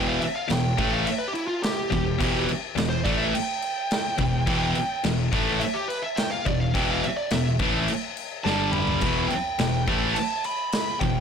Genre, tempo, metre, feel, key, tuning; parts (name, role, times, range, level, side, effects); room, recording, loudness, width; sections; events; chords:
heavy metal; 106 BPM; 4/4; straight; E phrygian; A4 = 440 Hz
high-gain lead guitar; melody; 0.0-11.2 s; E4 to B5; -29 LUFS; right 2 dB; distortion
heavy high-gain guitar; riff; 0.0-11.2 s; E2 to A3; -27 LUFS; left 10 dB; distortion
high-gain distorted guitar; riff; 0.0-11.2 s; E2 to A3; -27 LUFS; right 8 dB; distortion
modern bright picked electric bass; bass; 0.0-11.2 s; E1 to A1; -31 LUFS; equal; transformer saturation
big rock drum kit; drums; 0.2-11.1 s; crash cymbal, kick drum, snare drum, toms; -29 LUFS; equal
fuzz guitar; riff; 9.0-11.2 s; E2 to A3; -34 LUFS; equal; distortion
light reverb; blown-out, overdriven recording, overdrive; -22 LUFS; side -7 dB against mid
0.0-11.2 A section
lead electric guitar solo 0.0-11.2; drum fill 8.5-9.0
0.0 Em; 8.5 G5; 9.0 Em